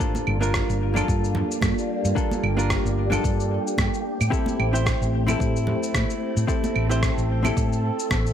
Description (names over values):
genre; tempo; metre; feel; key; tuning
sunset chillout; 111 BPM; 4/4; swing 56% on 16ths; G dorian; A4 = 440 Hz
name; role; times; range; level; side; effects
hollow-body jazz guitar; accompaniment; 0.0-8.3 s; Bb3 to C5; -28 LUFS; moving between left 4 dB and right 4 dB; auto-pan, ping-pong delay
soft string machine; sustained chords; 0.0-8.3 s; G3 to A4; -28 LUFS; equal; phaser, ensemble chorus
electronic kick drum; drums; 0.0-8.2 s; none; -26 LUFS; equal; overdrive
electronic shaker, claves and rim click; drums; 0.0-8.3 s; none; -29 LUFS; right 1 dB; none
congas; percussion; 0.1-8.2 s; none; -32 LUFS; right 3 dB; none
hollow-body short-scale fingered electric bass; bass; 0.3-8.3 s; G1 to A2; -24 LUFS; equal; none
room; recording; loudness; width
light reverb; none; -21 LUFS; side -9 dB against mid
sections
0.0-8.3 A section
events
none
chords
0.0 Gm7; 4.1 Am7